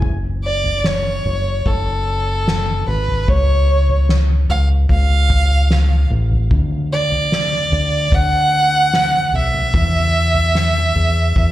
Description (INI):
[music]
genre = pop ballad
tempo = 74 BPM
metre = 4/4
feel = straight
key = F# minor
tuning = A4 = 442 Hz
[part]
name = fingered electric bass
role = bass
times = 0.0-11.5 s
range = F#1 to E2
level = -17 LUFS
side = equal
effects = none
[part]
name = soft-mallet drum kit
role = drums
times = 0.0-11.5 s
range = kick drum, snare drum, toms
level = -21 LUFS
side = left 1 dB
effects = none
[part]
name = rich violin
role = melody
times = 0.4-11.5 s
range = A4 to F#5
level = -18 LUFS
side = right 1 dB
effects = slapback echo, tape echo
[sound]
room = little or no reverb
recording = live gig heard through the venue's PA, club reverb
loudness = -14 LUFS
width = side -14 dB against mid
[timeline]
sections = 0.0-11.5 A section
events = none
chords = 0.0 F#m; 3.3 C#; 6.5 Bm/D (rootless); 9.7 N.C.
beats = | 0.02 0.85 1.66 2.48 | 3.29 4.10 4.90 5.71 | 6.51 7.32 8.12 8.93 | 9.74 10.55 11.36